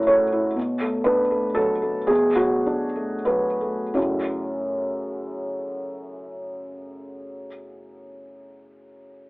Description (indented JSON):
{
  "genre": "neoclassical minimalist piano",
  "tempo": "85-128 BPM",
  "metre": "3/4",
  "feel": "rubato",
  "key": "F# minor",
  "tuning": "A4 = 440 Hz",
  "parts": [
    { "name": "felt-muted upright piano", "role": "solo", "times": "0.0-9.3 s", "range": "F#2 to C#5", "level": "-22 LUFS", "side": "equal", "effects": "none" }
  ],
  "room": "light reverb",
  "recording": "worn, warbling old tape, cassette tape, warbly pitch drift, telephone sound",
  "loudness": "-21 LUFS",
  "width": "side -24 dB against mid",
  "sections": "0.0-4.0 A section; 4.0-8.1 B section",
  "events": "slowing down 0.0-4.0",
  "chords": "0.0 F#m7; 0.6 Bm7; 4.0 F#m7"
}